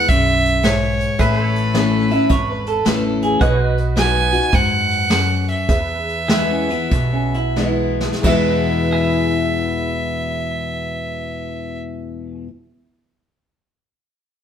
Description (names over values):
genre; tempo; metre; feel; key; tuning
honky-tonk and classic country; 86-108 BPM; 4/4; swing 66% on 8ths; E major; A4 = 440 Hz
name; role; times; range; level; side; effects
clear fiddle; melody; 0.0-11.8 s; B4 to G#5; -21 LUFS; right 2 dB; none
honky-tonk upright piano; accompaniment; 0.0-12.5 s; F#4 to E5; -28 LUFS; right 2 dB; none
picked steel-string acoustic guitar; accompaniment; 0.0-12.5 s; E2 to F#4; -21 LUFS; left 4 dB; none
pedal steel guitar; sustained chords; 0.0-11.8 s; F#4 to E5; -30 LUFS; right 1 dB; none
upright bass; bass; 0.1-12.4 s; G#1 to F#2; -24 LUFS; right 1 dB; none
vintage brush drum kit; drums; 0.1-8.5 s; crash cymbal, hi-hat, kick drum, snare drum; -20 LUFS; right 1 dB; none
electric guitar through a small old amp; second line; 2.1-12.4 s; C#4 to E5; -23 LUFS; right 3 dB; none
room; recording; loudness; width
moderate stone room reverb, RT60 1.0 s; band playing live in one room; -15 LUFS; side -8 dB against mid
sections
0.0-8.2 A section; 8.2-11.0 B section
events
slowing down 3.4-8.2; drum fill 7.6-8.2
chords
0.0 E; 1.2 A; 3.4 B; 5.7 E